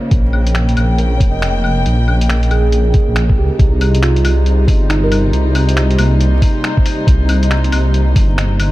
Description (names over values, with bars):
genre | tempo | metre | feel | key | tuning
future garage | 138 BPM | 4/4 | swing 63% on 16ths | C phrygian | A4 = 440 Hz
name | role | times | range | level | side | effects
muted felt-like synth keys | accompaniment | 0.0-8.7 s | G3 to Eb5 | -22 LUFS | right 4 dB | chorus, sidechain pumping, analog delay
dark chamber string section | sustained chords | 0.0-8.7 s | C3 to G5 | -20 LUFS | left 1 dB | sidechain pumping
dark detuned saw bass | bass | 0.1-8.7 s | F1 to Db2 | -13 LUFS | equal | sidechain pumping
electronic kick drum | drums | 0.1-8.3 s | none | -12 LUFS | equal | none
lo-fi sampler-style drum kit | drums | 0.1-8.7 s | claves, finger snaps, hi-hat | -23 LUFS | left 2 dB | none
drifting glass-harmonics texture | texture | 4.0-8.7 s | C4 to C5 | -28 LUFS | right 2 dB | chorus, built-in reverb
buzzing marimba with soft mallets | melody | 5.0-5.3 s | Bb4 | -25 LUFS | left 1 dB | vintage 12-bit sampler grit, analog delay
room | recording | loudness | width
digital ambience | dark, warm production, vinyl crackle | -11 LUFS | side -17 dB against mid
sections
0.0-8.7 A section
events
none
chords
0.0 Bbm; 3.6 Cm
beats
| 0.12 0.55 0.99 1.42 | 1.85 2.29 2.73 3.16 | 3.59 4.03 4.46 4.90 | 5.33 5.77 6.20 6.64 | 7.07 7.51 7.94 8.38